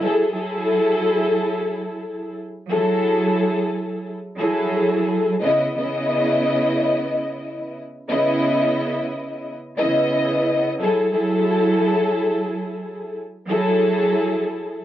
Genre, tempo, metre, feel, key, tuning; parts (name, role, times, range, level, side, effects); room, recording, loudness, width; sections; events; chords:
hip hop; 89 BPM; 4/4; swing 55% on 16ths; A4 = 442 Hz
warm studio string section; solo; 0.0-14.8 s; C#3 to D#5; -19 LUFS; equal; high-pass filter, low-pass filter
moderate studio reverb, RT60 0.6 s; -18 LUFS; side -12 dB against mid
0.0-14.8 A section
0.0 F#m9; 5.4 C#m9; 10.8 F#m9